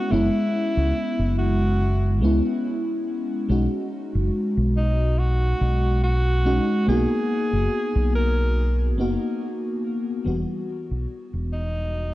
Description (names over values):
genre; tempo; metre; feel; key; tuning
vaporwave; 71 BPM; 4/4; swing 55% on 16ths; B major; A4 = 440 Hz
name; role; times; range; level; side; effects
bright alto saxophone; melody; 0.0-12.1 s; D#4 to A#4; -28 LUFS; equal; vintage 12-bit sampler grit, tape echo
FM electric piano with soft pad layer; accompaniment; 0.0-12.1 s; E3 to F#4; -24 LUFS; equal; wide subtle chorus, cassette tape, tape echo
fingered electric bass; bass; 0.1-12.1 s; E1 to C#2; -22 LUFS; equal; none
room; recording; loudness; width
moderate concert hall reverb, RT60 2.2 s; dark, warm production, cassette tape; -20 LUFS; side -16 dB against mid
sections
0.0-12.1 A section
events
fade-out 8.0-12.1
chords
0.0 F#9sus4; 3.5 B69; 6.9 G#m9; 10.3 Emadd9